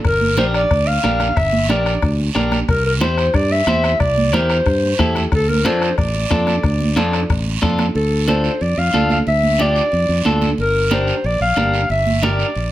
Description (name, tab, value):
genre	latin, cumbia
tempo	182 BPM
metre	4/4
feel	straight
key	D minor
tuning	A4 = 439 Hz
part	warm clarinet	melody	0.0-12.7 s	A4 to F5	-19 LUFS	left 1 dB	none
part	modern bright fingered electric bass	bass	0.0-12.7 s	G1 to G2	-19 LUFS	equal	none
part	bombo	percussion	0.0-8.0 s	none	-21 LUFS	left 2 dB	none
part	congas	percussion	0.0-12.4 s	none	-23 LUFS	right 4 dB	none
part	guiro	percussion	0.0-12.7 s	none	-28 LUFS	right 8 dB	none
part	electric guitar at the edge of break-up	accompaniment	0.4-12.5 s	D4 to C5	-21 LUFS	left 1 dB	none
room	light reverb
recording	none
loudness	-14 LUFS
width	side -14 dB against mid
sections	0.0-8.0 A section; 8.0-12.7 B section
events	none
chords	0.0 Gm; 2.7 C; 5.3 Dm; 10.6 Gm